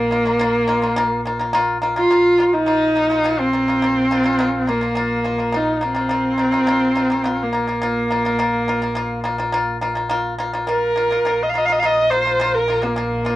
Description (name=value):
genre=mongolian traditional, Mongolian folk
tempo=105 BPM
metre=4/4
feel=straight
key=unclear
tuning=A4 = 443 Hz
part: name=clear horsehead fiddle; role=melody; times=0.0-13.4 s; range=Bb3 to F5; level=-17 LUFS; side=equal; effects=cassette tape
part: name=pipa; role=arpeggios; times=0.0-13.4 s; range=Bb3 to F4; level=-22 LUFS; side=left 1 dB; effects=none
part: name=dark double bass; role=drone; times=0.0-13.4 s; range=Bb1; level=-30 LUFS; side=equal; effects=stereo widening
room=wet booth ambience, RT60 0.2 s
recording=home recording on cassette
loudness=-16 LUFS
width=side -15 dB against mid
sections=0.0-13.4 A section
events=none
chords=0.0 Bb5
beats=0.39 0.96 1.54 | 2.11 2.68 3.25 3.82 | 4.39 4.96 5.54 6.11 | 6.68 7.25 7.82 8.39 | 8.97 9.54 10.11 10.68 | 11.26 11.83 12.40 12.98